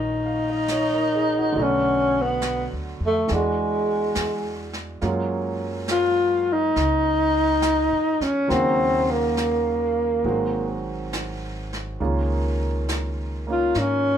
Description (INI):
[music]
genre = jazz ballad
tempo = 69 BPM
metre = 4/4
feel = swing 68% on 8ths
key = Eb minor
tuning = A4 = 442 Hz
[part]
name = breathy tenor saxophone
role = melody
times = 0.0-14.2 s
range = G#3 to F4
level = -20 LUFS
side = left 1 dB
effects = none
[part]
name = clear baby grand piano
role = accompaniment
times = 0.0-14.2 s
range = Db3 to F5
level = -29 LUFS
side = right 4 dB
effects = none
[part]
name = upright bass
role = bass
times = 0.0-14.2 s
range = Ab1 to Ab2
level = -29 LUFS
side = equal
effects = none
[part]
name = jazz brush drum kit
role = drums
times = 0.7-14.2 s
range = brushed snare drum, hi-hat, snare drum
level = -34 LUFS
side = equal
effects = none
[sound]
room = wet studio reverb, RT60 0.5 s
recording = rough home demo mix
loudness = -20 LUFS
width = side -9 dB against mid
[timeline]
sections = 0.0-14.2 A section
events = none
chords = 0.0 Ebm9; 1.5 Bm7; 3.3 E9; 5.0 Gbmaj9; 8.5 Ebm7; 10.2 Ab7; 12.0 Db69